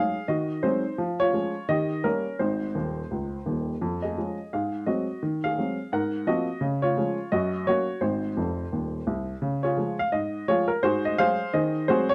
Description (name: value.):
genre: jazz, stride piano.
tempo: 171 BPM.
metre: 4/4.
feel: swing 61% on 8ths.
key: Db major.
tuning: A4 = 441 Hz.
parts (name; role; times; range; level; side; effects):
warm upright piano; solo; 0.0-12.1 s; Eb1 to Gb5; -26 LUFS; equal; none.
room: moderate club reverb, RT60 0.5 s.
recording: none.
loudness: -27 LUFS.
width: mono.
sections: 0.0-9.4 A section; 9.4-12.1 A section.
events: upright piano fill 2.8-3.8, 8.4-9.4.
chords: 0.3 Ab7/Eb; 1.0 Db/F; 1.7 Eb7; 2.4 Ab; 3.8 Db/F; 4.5 Ab7; 5.2 Ab7/Eb; 5.9 Ab13; 6.6 Db; 7.3 Gb; 8.0 Ab; 9.4 Db; 10.8 Ab7; 11.5 Ab7/Eb.